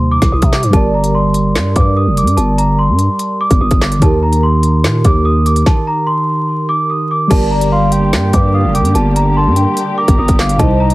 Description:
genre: hip hop, drill.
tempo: 146 BPM.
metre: 4/4.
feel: half-time.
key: G minor.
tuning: A4 = 438 Hz.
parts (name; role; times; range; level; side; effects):
large celesta; melody; 0.0-10.9 s; A5 to Eb6; -17 LUFS; equal; tape echo.
mellow tine electric piano; accompaniment; 0.0-10.9 s; C3 to D5; -17 LUFS; right 2 dB; phaser.
growling 808-style bass; bass; 0.0-10.9 s; F1 to C3; -14 LUFS; equal; none.
drill drum kit; drums; 0.2-10.9 s; crash cymbal, handclaps, hi-hat, kick drum, snare drum; -14 LUFS; equal; none.
soft octave-layered synth lead; second line; 7.3-10.9 s; D5 to Bb5; -21 LUFS; left 3 dB; chorus, phaser, tape echo.
muted studio string section; sustained chords; 7.3-10.9 s; D3 to G4; -22 LUFS; left 1 dB; none.
room: little or no reverb.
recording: heavily compressed radio sound, vinyl crackle.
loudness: -10 LUFS.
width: side -19 dB against mid.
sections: 0.0-7.3 A section; 7.3-10.9 B section.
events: stop 5.7-7.3.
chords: 0.0 Cm; 0.7 Gm; 4.0 Eb; 7.3 Gm.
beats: 0.32 | 0.73 1.14 1.55 1.97 | 2.38 2.79 3.20 3.61 | 4.02 4.43 4.84 5.25 | 5.66 6.08 6.49 6.90 | 7.31 7.72 8.13 8.54 | 8.95 9.36 9.77 10.18 | 10.60.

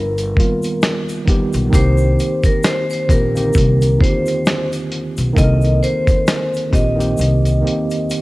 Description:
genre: lo-fi hip hop.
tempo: 66 BPM.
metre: 4/4.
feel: swing 57% on 16ths.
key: C minor.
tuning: A4 = 440 Hz.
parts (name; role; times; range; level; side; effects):
vibraphone with hard mallets; melody; 0.0-8.2 s; Bb4 to Eb5; -21 LUFS; equal; low-pass filter, cassette tape.
upright bass; bass; 0.0-7.6 s; G1 to C2; -16 LUFS; equal; none.
dusty soul sampler-style drum kit; drums; 0.2-8.2 s; hi-hat, kick drum, snare drum; -17 LUFS; equal; cassette tape.
egg shaker; percussion; 0.2-8.2 s; none; -38 LUFS; left 4 dB; none.
mellow tine electric piano; accompaniment; 0.4-8.2 s; D3 to Bb4; -20 LUFS; right 1 dB; medium stereo tremolo, low-pass filter, cassette tape.
room: small room ambience.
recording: home recording on cassette.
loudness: -14 LUFS.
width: side -20 dB against mid.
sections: 0.0-8.2 A section.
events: drum fill 7.2-8.2.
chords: 0.0 G7alt; 1.7 Cm7.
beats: 0.82 | 1.73 2.64 3.55 4.46 | 5.37 6.27 7.18 8.09.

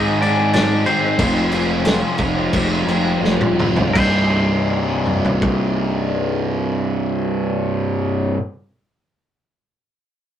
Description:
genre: quiet-loud alternative rock.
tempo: 82-94 BPM.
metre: 4/4.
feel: straight.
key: C minor.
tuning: A4 = 440 Hz.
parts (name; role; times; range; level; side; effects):
twangy electric guitar; melody; 0.0-8.3 s; C4 to Eb5; -23 LUFS; left 1 dB; none.
distorted electric guitar; riff; 0.0-8.4 s; C2 to Ab4; -26 LUFS; right 6 dB; distortion.
raw garage guitar; riff; 0.0-8.4 s; C2 to Ab4; -22 LUFS; left 4 dB; overdrive, phaser.
sludgy distorted guitar; riff; 0.0-8.4 s; C2 to Ab3; -23 LUFS; equal; overdrive.
fuzz picked electric bass; bass; 0.0-8.3 s; C1 to Ab2; -23 LUFS; right 1 dB; overdrive.
loose indie drum kit; drums; 0.2-5.6 s; crash cymbal, kick drum, snare drum, toms; -22 LUFS; equal; none.
room: wet studio ambience, RT60 0.5 s.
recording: rough rehearsal-room recording, tube saturation.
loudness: -16 LUFS.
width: side -10 dB against mid.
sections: 0.0-3.9 A section; 3.9-6.9 B section.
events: slowing down 0.0-3.9; drum fill 3.2-3.9.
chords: 0.0 Ab; 1.2 Fm; 3.9 Cm.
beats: 0.53 | 1.18 1.84 2.52 3.22 | 3.94 4.67 5.40 6.13.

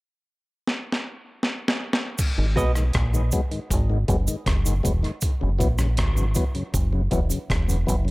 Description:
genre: dub reggae.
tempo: 79 BPM.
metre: 4/4.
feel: straight.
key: G# minor.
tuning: A4 = 440 Hz.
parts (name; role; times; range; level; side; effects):
breakbeat sampler-style drum kit; drums; 0.7-8.1 s; crash cymbal, hi-hat, kick drum, rim click, snare drum; -25 LUFS; equal; none.
cabasa; percussion; 2.2-8.1 s; none; -34 LUFS; right 4 dB; none.
tonewheel organ; accompaniment; 2.4-8.1 s; F#2 to B3; -28 LUFS; left 2 dB; slow rotary speaker, dub echo.
deep dub fingered electric bass; bass; 2.4-8.1 s; E1 to B1; -22 LUFS; equal; none.
semi-hollow electric guitar; accompaniment; 2.6-2.7 s; F#4 to D#5; -30 LUFS; right 3 dB; dub echo.
room: light reverb.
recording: none.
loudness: -21 LUFS.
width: side -22 dB against mid.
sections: 0.0-2.2 A section; 2.2-8.1 B section.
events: drum fill 0.7-2.2.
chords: 0.0 N.C.; 2.2 G#m7; 5.2 F#7sus4.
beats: 0.67 1.43 | 2.19 2.95 3.71 4.46 | 5.22 5.98 6.74 7.50.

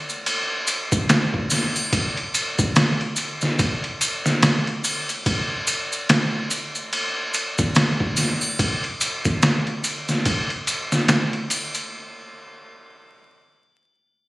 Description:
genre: trip hop.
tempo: 72 BPM.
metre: 4/4.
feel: swing 59% on 16ths.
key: none.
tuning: none.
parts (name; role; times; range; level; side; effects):
maracas and triangle; percussion; 0.1-11.9 s; none; -26 LUFS; equal; none.
trip hop sampler-style drum kit; drums; 0.3-11.9 s; kick drum, ride cymbal, snare drum; -20 LUFS; equal; overdrive.
room: light reverb, digital ambience.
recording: recorded on a phone in the room, studio reverb, vinyl crackle.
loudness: -19 LUFS.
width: side -20 dB against mid.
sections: 0.0-11.9 A section; 11.9-14.3 B section.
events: none.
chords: none.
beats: 0.26 1.09 | 1.93 2.76 3.59 4.42 | 5.26 6.09 6.92 7.76 | 8.59 9.43 10.26 11.09.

